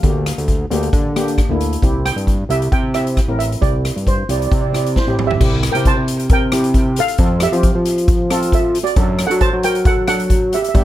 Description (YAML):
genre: calypso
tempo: 134 BPM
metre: 4/4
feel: swing 53% on 16ths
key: unclear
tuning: A4 = 440 Hz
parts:
  - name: steel pan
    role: melody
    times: 0.0-10.8 s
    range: E4 to A5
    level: -21 LUFS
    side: right 3 dB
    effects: tape echo
  - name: steel pan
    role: accompaniment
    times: 0.0-10.8 s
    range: Bb3 to Bb4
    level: -23 LUFS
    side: left 1 dB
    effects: none
  - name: fat analog bass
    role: bass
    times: 0.0-10.8 s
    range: A1 to F#3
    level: -18 LUFS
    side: equal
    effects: none
  - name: street-band drum kit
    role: drums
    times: 0.0-10.8 s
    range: crash cymbal, hi-hat, kick drum, rim click, snare drum, toms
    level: -17 LUFS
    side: equal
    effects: none
room: little or no reverb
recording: none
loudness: -14 LUFS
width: side -14 dB against mid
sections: 0.0-5.4 A section; 5.4-10.8 B section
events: drum fill 5.0-5.4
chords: 0.0 Gm7/D; 1.8 Cadd9; 5.4 C7; 7.2 Fmaj7; 9.0 D/F#